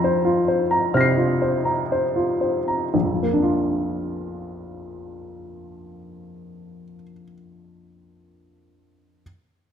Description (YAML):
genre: neoclassical minimalist piano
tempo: 56-69 BPM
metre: 4/4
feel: rubato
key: Bb major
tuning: A4 = 442 Hz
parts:
  - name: warm upright piano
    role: solo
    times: 0.0-9.2 s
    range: Bb1 to C7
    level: -21 LUFS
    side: equal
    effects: none
room: moderate recital hall reverb, RT60 1.7 s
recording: none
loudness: -19 LUFS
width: side -8 dB against mid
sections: 0.0-2.9 A section; 2.9-7.0 B section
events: slowing down 0.0-2.9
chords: 0.0 Fsus4; 2.9 Bb